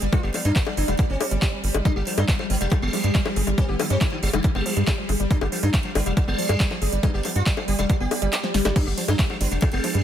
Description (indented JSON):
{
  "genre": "psychedelic trance",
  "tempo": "139 BPM",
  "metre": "4/4",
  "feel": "straight",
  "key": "G major",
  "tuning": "A4 = 444 Hz",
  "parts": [
    { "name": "sitar", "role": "melody", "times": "0.0-10.0 s", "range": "D3 to G4", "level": "-30 LUFS", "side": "left 1 dB", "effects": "phaser, sidechain pumping, digital delay" },
    { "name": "pulsing gated texture", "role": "sustained chords", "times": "0.0-10.0 s", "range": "G3 to D5", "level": "-30 LUFS", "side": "equal", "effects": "chorus, built-in reverb, sidechain pumping" },
    { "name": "woody wave-folded pluck", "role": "riff", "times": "0.0-10.0 s", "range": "F3 to Ab4", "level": "-31 LUFS", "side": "moving between left 6 dB and right 5 dB", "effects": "chorus, auto-pan, sidechain pumping, digital delay" },
    { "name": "tight sequencer bass", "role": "bass", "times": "0.0-10.0 s", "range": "F1 to G2", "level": "-24 LUFS", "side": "equal", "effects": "none" },
    { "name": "big-room dance drum kit", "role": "drums", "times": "0.0-10.0 s", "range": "bongos, crash cymbal, handclaps, hi-hat, ride cymbal, snare drum", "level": "-27 LUFS", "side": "left 2 dB", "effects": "overdrive" },
    { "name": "formant-sweep wobble bass", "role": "second line", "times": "0.1-4.2, 7.0-8.0 s", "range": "G3 to B3", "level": "-42 LUFS", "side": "right 1 dB", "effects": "none" },
    { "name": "electronic kick drum", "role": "drums", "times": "0.1-9.7 s", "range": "none", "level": "-22 LUFS", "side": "equal", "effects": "overdrive" }
  ],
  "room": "digital ambience",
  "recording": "none",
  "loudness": "-20 LUFS",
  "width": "side -10 dB against mid",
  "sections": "0.0-10.0 A section",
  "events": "kick drops out 8.3-8.8; drum fill 8.4-8.8",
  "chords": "0.0 G5",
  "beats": "| 0.13 0.56 0.99 1.42 | 1.85 2.28 2.72 3.15 | 3.58 4.01 4.44 4.87 | 5.31 5.74 6.17 6.60 | 7.03 7.46 7.90 8.33 | 8.76 9.19 9.62"
}